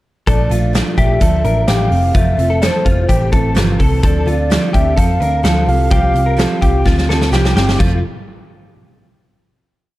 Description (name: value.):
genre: jangly indie pop.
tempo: 127 BPM.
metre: 4/4.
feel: straight.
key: F major.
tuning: A4 = 441 Hz.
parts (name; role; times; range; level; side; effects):
hollow clarinet-like synth lead; melody; 0.3-7.3 s; C5 to F5; -20 LUFS; equal; chorus, plate reverb.
picked steel-string acoustic guitar; accompaniment; 0.3-8.0 s; F2 to A4; -20 LUFS; right 4 dB; none.
direct-recorded clean electric guitar; arpeggios; 0.3-8.0 s; F4 to Bb4; -22 LUFS; left 4 dB; ensemble chorus, plate reverb.
vintage muted picked electric bass; bass; 0.3-8.0 s; F1 to F2; -16 LUFS; equal; none.
big rock drum kit; drums; 0.3-7.9 s; crash cymbal, hi-hat, kick drum, snare drum; -17 LUFS; equal; none.
room: light reverb.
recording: dark, warm production.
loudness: -12 LUFS.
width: side -16 dB against mid.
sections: 0.3-7.8 pre-chorus; 7.8-9.7 final chord.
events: drum fill 6.9-7.8.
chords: 0.3 Bbmaj7; 1.9 Fmaj7; 4.0 Dm7; 5.7 Csus4; 7.8 Fmaj7.